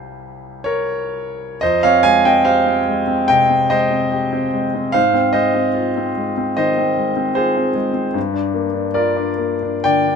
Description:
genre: classical, impressionist solo piano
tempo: 52-78 BPM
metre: 4/4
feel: rubato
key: F minor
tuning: A4 = 440 Hz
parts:
  - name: clear grand piano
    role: solo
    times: 0.0-10.2 s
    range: F2 to C7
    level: -15 LUFS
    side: equal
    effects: none
room: light reverb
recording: minimal, uncompressed stereo recording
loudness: -15 LUFS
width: side -6 dB against mid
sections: 0.0-1.6 A section; 1.6-10.2 B section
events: none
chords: 0.0 C7sus4; 1.6 Fm9; 5.0 Ab6; 8.2 Gm7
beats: 0.64 | 1.61 2.45 3.30 4.13 | 4.96 5.78 6.59 7.37 | 8.16 8.96 9.85

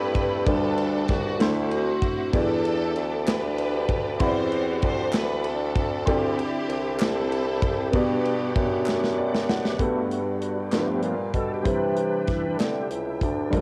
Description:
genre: slow gospel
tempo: 64 BPM (dotted quarters)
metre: 6/8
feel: straight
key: G major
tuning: A4 = 445 Hz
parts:
  - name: warm studio string section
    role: melody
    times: 0.0-9.5 s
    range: A3 to C5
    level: -33 LUFS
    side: equal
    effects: cassette tape
  - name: warm upright piano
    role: accompaniment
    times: 0.0-13.6 s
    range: G2 to B5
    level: -31 LUFS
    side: equal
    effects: cassette tape
  - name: bright tonewheel organ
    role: sustained chords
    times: 0.0-13.6 s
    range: E3 to D6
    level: -35 LUFS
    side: equal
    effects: fast rotary speaker, chorus vibrato, cassette tape
  - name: warm bassoon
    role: bass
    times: 0.0-13.6 s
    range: C2 to D3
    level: -30 LUFS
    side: equal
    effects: none
  - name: modern studio drum kit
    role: drums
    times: 0.1-13.6 s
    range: hi-hat, kick drum, ride cymbal, snare drum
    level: -30 LUFS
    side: equal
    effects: cassette tape
  - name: group handclap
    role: percussion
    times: 3.3-12.9 s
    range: none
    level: -41 LUFS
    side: equal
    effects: none
  - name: dark studio string section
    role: sustained chords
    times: 9.8-13.6 s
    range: C4 to G5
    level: -44 LUFS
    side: equal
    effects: cassette tape
room: light reverb, small room ambience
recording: home recording on cassette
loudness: -25 LUFS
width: mono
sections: 0.0-9.8 A section; 9.8-13.6 B section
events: drum fill 8.9-9.8; upright piano fill 8.9-9.8; tonewheel organ solo 9.8-13.6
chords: 0.5 G/D; 1.4 D9; 2.3 Em7; 4.2 Cmaj9#11; 6.1 D9sus4; 7.9 Gmaj7; 9.8 Gmaj9; 10.7 G7; 11.7 Cmaj7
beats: | 0.47 1.40 | 2.34 3.27 | 4.20 5.14 | 6.07 7.00 | 7.94 8.87 | 9.80 10.74 | 11.67 12.60 | 13.54

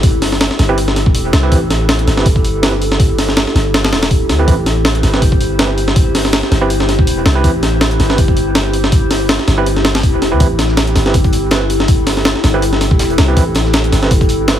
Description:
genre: drum and bass, jungle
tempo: 162 BPM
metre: 4/4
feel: swing 55% on 16ths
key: A minor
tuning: A4 = 440 Hz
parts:
  - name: warbly tape-like pad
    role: sustained chords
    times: 0.0-14.6 s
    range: C4 to C5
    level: -19 LUFS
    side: left 1 dB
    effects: chorus, built-in reverb
  - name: long sustained 808-style bass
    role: bass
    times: 0.0-14.6 s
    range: E1 to D2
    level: -16 LUFS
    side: equal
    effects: none
  - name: breakbeat sampler-style drum kit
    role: drums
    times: 0.0-14.6 s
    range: hi-hat, kick drum, snare drum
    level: -13 LUFS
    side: equal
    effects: none
  - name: overdriven tine electric piano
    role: stabs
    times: 0.7-14.6 s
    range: C4 to B4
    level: -21 LUFS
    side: right 4 dB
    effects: medium tremolo, dub echo
  - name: warm soul drum kit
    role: drums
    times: 10.4-14.6 s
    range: hi-hat, snare drum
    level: -28 LUFS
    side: right 2 dB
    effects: none
room: light reverb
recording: heavily compressed radio sound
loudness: -10 LUFS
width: side -10 dB against mid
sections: 0.0-14.6 A section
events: none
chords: 0.0 Am7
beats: | 0.03 0.41 0.78 1.15 | 1.52 1.89 2.26 2.63 | 3.00 3.37 3.74 4.11 | 4.48 4.85 5.22 5.59 | 5.96 6.33 6.70 7.07 | 7.44 7.81 8.18 8.55 | 8.92 9.29 9.66 10.03 | 10.40 10.78 11.14 11.52 | 11.89 12.26 12.63 13.00 | 13.37 13.74 14.11 14.48

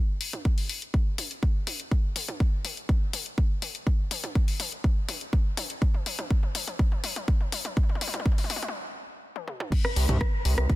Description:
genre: melodic techno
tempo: 123 BPM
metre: 4/4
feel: straight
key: unclear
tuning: A4 = 440 Hz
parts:
  - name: house drum kit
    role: drums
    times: 0.2-10.8 s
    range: crash cymbal, hi-hat, rim click, toms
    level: -32 LUFS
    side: left 2 dB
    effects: high-pass filter on hats, high-pass filter on toms, high-pass filter on cymbals, high-pass filter on snare
  - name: electronic kick drum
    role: drums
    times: 0.5-10.8 s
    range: none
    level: -24 LUFS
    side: equal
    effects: none
  - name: gritty driven synth bass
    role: bass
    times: 10.0-10.7 s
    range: C2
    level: -23 LUFS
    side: equal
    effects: tube saturation, sidechain pumping
room: little or no reverb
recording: dense, heavily limited modern master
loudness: -25 LUFS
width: side -18 dB against mid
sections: 0.0-9.7 A section; 9.7-10.8 B section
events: build-up 0.0-9.7; drum fill 0.0-8.7, 9.4-9.7; stop 8.7-9.7; drop 9.7-10.8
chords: none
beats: 0.45 0.94 1.43 | 1.92 2.40 2.89 3.38 | 3.87 4.35 4.84 5.33 | 5.82 6.30 6.79 7.28 | 7.77 8.26 8.74 9.23 | 9.72 10.21 10.70

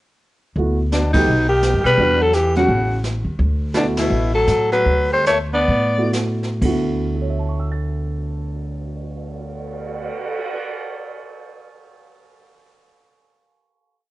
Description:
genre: jazz, small-group swing and bop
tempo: 118-170 BPM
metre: 4/4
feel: swing 62% on 8ths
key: D major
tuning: A4 = 441 Hz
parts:
  - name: dark concert grand piano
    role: accompaniment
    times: 0.6-11.2 s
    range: D2 to A6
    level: -24 LUFS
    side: right 2 dB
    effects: none
  - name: upright bass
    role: bass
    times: 0.6-10.1 s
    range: A1 to B2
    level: -22 LUFS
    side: equal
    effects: none
  - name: jazz brush drum kit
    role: drums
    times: 0.6-10.6 s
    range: brushed snare drum, crash cymbal, cymbal swell, hi-hat, kick drum, ride cymbal, snare drum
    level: -28 LUFS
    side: right 1 dB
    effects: none
  - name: growling alto saxophone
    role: melody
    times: 0.9-6.1 s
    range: D4 to D5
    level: -17 LUFS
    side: left 1 dB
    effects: none
  - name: mellow baritone saxophone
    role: second line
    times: 0.9-6.1 s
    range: B2 to B3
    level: -24 LUFS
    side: right 1 dB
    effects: none
room: light reverb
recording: worn, warbling old tape, cassette tape, warbly pitch drift, nothing above 10.8 kHz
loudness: -17 LUFS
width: side -17 dB against mid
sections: 0.6-6.6 A section; 6.6-10.7 final chord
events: band accent 1.1, 3.9; slowing down 3.4-6.6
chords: 0.6 D69; 1.3 B; 2.0 Em7; 2.7 A6; 3.4 D69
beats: | 0.56 0.91 1.27 1.62 | 1.97 2.33 2.68 3.03 | 3.39 3.74 4.10 4.47 | 4.86 5.26 5.68 6.13 | 6.62 7.12 7.63 8.13 | 8.64 9.14 9.65 10.16

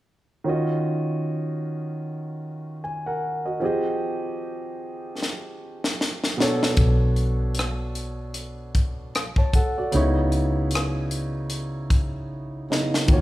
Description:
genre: R&B, neo-soul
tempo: 76 BPM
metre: 4/4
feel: swing 57% on 16ths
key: unclear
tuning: A4 = 438 Hz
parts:
  - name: warm grand piano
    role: accompaniment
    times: 0.4-13.2 s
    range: B2 to A5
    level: -26 LUFS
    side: right 1 dB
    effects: none
  - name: tight funk drum kit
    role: drums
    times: 5.2-13.2 s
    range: hi-hat, kick drum, rim click, snare drum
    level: -22 LUFS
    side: equal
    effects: none
  - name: vintage muted fingered electric bass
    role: bass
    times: 6.8-13.2 s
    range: B1 to Eb2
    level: -24 LUFS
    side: equal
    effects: none
room: moderate recital hall reverb, RT60 1.6 s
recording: recorded in a church or concert hall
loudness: -22 LUFS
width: side -16 dB against mid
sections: 0.5-13.1 A section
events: drum fill 5.2-6.8, 12.3-13.1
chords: 0.5 Ebm9; 3.6 Fm9; 6.4 Bm9; 9.9 Dbm9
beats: | 0.46 1.25 2.04 2.82 | 3.61 4.40 5.19 5.98 | 6.77 7.56 8.35 9.14 | 9.93 10.72 11.51 12.30 | 13.09

